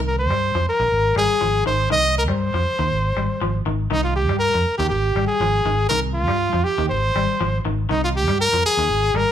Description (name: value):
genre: afrobeat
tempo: 120 BPM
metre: 4/4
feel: straight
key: C minor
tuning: A4 = 440 Hz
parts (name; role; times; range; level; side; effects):
- clean electric guitar; arpeggios; 0.0-9.3 s; Eb3 to G3; -27 LUFS; left 4 dB; none
- fingered electric bass; bass; 0.0-9.2 s; Ab1 to G2; -23 LUFS; right 1 dB; none
- clear trumpet; melody; 0.1-9.3 s; Eb4 to Eb5; -20 LUFS; equal; none
room: light reverb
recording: band playing live in one room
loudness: -18 LUFS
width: side -10 dB against mid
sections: 0.0-9.3 A section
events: none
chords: 0.0 Cm7; 0.9 Ab5; 1.9 Cm; 2.9 Abmaj7; 3.9 Cm; 4.9 Ab5; 5.9 Cm; 6.9 Abmaj7; 7.9 Cm